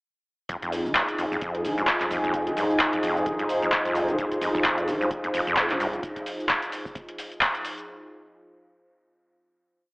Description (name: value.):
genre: acid house.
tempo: 130 BPM.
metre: 4/4.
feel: swing 57% on 16ths.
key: F minor.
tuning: A4 = 440 Hz.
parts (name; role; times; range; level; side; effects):
warm analog pad; sustained chords; 0.5-7.8 s; F3 to Ab4; -28 LUFS; equal; wide subtle chorus, sidechain pumping.
acid bass, saw; riff; 0.5-5.9 s; F2 to Eb3; -29 LUFS; equal; overdrive, wide subtle chorus, sidechain pumping, diffuse ambient delay.
warm sub bass; bass; 0.5-6.0 s; F1 to C2; -51 LUFS; equal; none.
electro analog drum machine; drums; 0.5-7.9 s; handclaps, hi-hat, shaker; -26 LUFS; equal; none.
electronic kick drum; drums; 0.5-7.5 s; none; -42 LUFS; equal; none.
deep dark ambient pad; texture; 2.2-6.0 s; F4 to G5; -33 LUFS; equal; chorus, built-in reverb, sidechain pumping.
room: wet plate reverb, RT60 1.5 s.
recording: dreamy mix soaked in reverb, telephone sound.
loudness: -23 LUFS.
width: side -33 dB against mid.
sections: 0.5-7.9 groove.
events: fade-in on ambient pad 0.5-6.0.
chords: 0.5 Fm7.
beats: | 0.49 0.95 1.42 1.88 | 2.34 2.80 3.26 3.72 | 4.18 4.65 5.11 5.57 | 6.03 6.49 6.96 7.42.